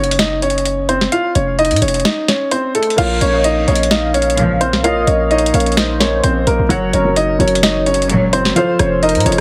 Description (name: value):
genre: hip hop, trap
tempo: 129 BPM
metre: 4/4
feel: half-time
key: Bb harmonic minor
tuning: A4 = 440 Hz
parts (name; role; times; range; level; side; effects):
- clear concert grand piano; melody; 0.0-9.4 s; A3 to Gb5; -18 LUFS; equal; low-pass filter, delay
- hard-hitting 808-style bass; bass; 0.0-9.4 s; F1 to A2; -21 LUFS; equal; none
- trap drum kit; drums; 0.0-9.4 s; crash cymbal, hi-hat, rim click, snare drum; -21 LUFS; equal; none
- felt-muted upright piano; accompaniment; 3.0-9.4 s; F3 to F5; -21 LUFS; equal; low-pass filter
- warm velvety synth lead; second line; 3.2-9.4 s; Bb4 to F5; -24 LUFS; equal; chorus, delay
- warm symphonic string section; stabs; 4.4-4.7, 8.1-8.4 s; Db2 to Gb3; -20 LUFS; equal; none
room: small room ambience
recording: heavily compressed radio sound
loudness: -15 LUFS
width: mono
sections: 0.0-3.0 A section; 3.0-9.4 B section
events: kick muted 2.1-3.0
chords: 0.0 Gb5; 1.1 F; 3.0 Bbm; 6.7 Gb; 8.6 F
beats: 0.19 0.66 | 1.12 1.59 2.05 2.52 | 2.98 3.45 3.91 4.38 | 4.84 5.31 5.77 6.24 | 6.70 7.17 7.63 8.10 | 8.56 9.03